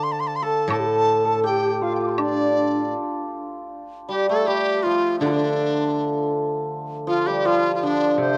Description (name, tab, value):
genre	chinese traditional, Chinese chamber ensemble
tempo	80 BPM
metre	2/4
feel	rubato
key	D yu mode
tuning	A4 = 440 Hz
part	bright reedy large dizi	melody	0.0-8.4 s	D4 to D6	-26 LUFS	equal	none
part	hammered dulcimer	second line	0.0-8.4 s	C3 to G5	-26 LUFS	equal	none
part	steel-string zither	accompaniment	0.0-2.9, 5.2-8.4 s	A2 to D3	-30 LUFS	equal	none
part	mellow xiao	second line	0.4-2.9 s	D4 to A4	-26 LUFS	equal	none
part	woodblock	percussion	0.7-2.4 s	none	-28 LUFS	equal	none
room	light reverb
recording	worn, warbling old tape, cassette tape, warbly pitch drift, faint mains hum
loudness	-22 LUFS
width	mono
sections	0.0-3.7 A section; 3.7-8.4 B section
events	none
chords	none